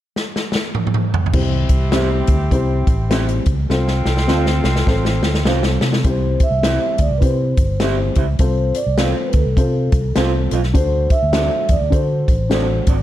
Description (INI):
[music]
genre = uptempo 1960s-style soul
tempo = 102 BPM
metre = 4/4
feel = swing 61% on 8ths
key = C major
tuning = A4 = 439 Hz
[part]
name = swinging big-band drum kit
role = drums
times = 0.2-13.0 s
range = crash cymbal, hi-hat, kick drum, snare drum, toms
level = -18 LUFS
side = equal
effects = none
[part]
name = clear saxophone section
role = second line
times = 1.3-5.8 s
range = C4 to A4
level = -26 LUFS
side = right 1 dB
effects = none
[part]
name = dark upright piano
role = accompaniment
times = 1.3-12.9 s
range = C4 to C5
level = -23 LUFS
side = left 3 dB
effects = none
[part]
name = fingered electric bass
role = bass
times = 1.3-13.0 s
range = G1 to D3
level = -19 LUFS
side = equal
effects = none
[part]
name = electric guitar through a small old amp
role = stabs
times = 1.9-12.9 s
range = C4 to F5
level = -25 LUFS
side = right 6 dB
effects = lush chorus
[part]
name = vibraphone with soft mallets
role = melody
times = 6.1-12.8 s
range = A4 to E5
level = -22 LUFS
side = right 1 dB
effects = none
[sound]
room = light reverb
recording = dark, warm production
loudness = -15 LUFS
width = side -13 dB against mid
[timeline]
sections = 0.0-1.3 A section; 1.3-6.0 B section; 6.0-13.0 C section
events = drum fill 0.2-1.3, 3.7-6.0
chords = 0.0 N.C.; 1.3 C; 3.7 F/C; 6.0 C; 8.4 F/C; 10.7 D7